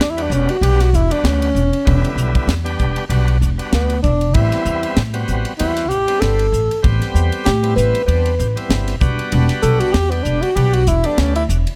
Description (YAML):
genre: electric jazz fusion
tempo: 97 BPM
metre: 4/4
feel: swing 55% on 16ths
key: A dorian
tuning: A4 = 442 Hz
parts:
  - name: breathy tenor saxophone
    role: melody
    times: 0.0-11.4 s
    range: B3 to B4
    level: -21 LUFS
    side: equal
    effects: none
  - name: bright tonewheel organ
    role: accompaniment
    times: 0.0-11.6 s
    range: D3 to A4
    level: -27 LUFS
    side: equal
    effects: slow rotary speaker, overdrive
  - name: upright bass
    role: bass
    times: 0.0-11.6 s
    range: E1 to A2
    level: -19 LUFS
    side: equal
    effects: none
  - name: tight funk drum kit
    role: drums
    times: 0.0-11.8 s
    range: hi-hat, kick drum, ride cymbal, snare drum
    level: -24 LUFS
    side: equal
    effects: none
room: studio reverb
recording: none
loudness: -17 LUFS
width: mono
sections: 0.0-11.8 A section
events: tenor saxophone solo 0.0-11.8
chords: 0.0 Em9; 4.3 Am9; 9.0 Em9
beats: 0.01 0.63 1.25 | 1.87 2.49 3.11 3.73 | 4.35 4.97 5.59 6.21 | 6.83 7.45 8.07 8.70 | 9.32 9.94 10.56 11.18